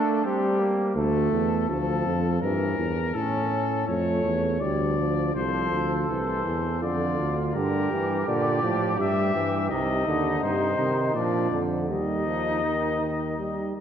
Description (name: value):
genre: classical, imitative canzona for brass ensemble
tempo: 82 BPM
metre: 3/4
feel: straight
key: G minor, Eb major from 9.7 s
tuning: A4 = 439 Hz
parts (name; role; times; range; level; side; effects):
- mellow trumpet; melody; 0.0-13.7 s; G4 to E5; -30 LUFS; left 5 dB; none
- warm flugelhorn; second line; 0.0-1.0, 5.3-13.7 s; Bb3 to A4; -30 LUFS; right 3 dB; none
- clear trombone; accompaniment; 0.0-13.8 s; C3 to C#4; -28 LUFS; right 2 dB; none
- mellow bass trombone; bass; 1.0-13.8 s; C2 to C3; -27 LUFS; right 1 dB; none
room: wet church reverb, RT60 2.6 s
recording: dark, warm production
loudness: -23 LUFS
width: side -8 dB against mid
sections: 0.0-5.4 A section; 5.4-13.8 B section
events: none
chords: 0.2 Gm; 1.0 Dm; 2.4 Edim/G; 3.1 A; 4.6 Dm; 5.4 F/C; 6.8 Dm/F; 7.5 Gm; 9.0 Em/G; 9.7 Cm; 11.1 Bb; 11.9 Eb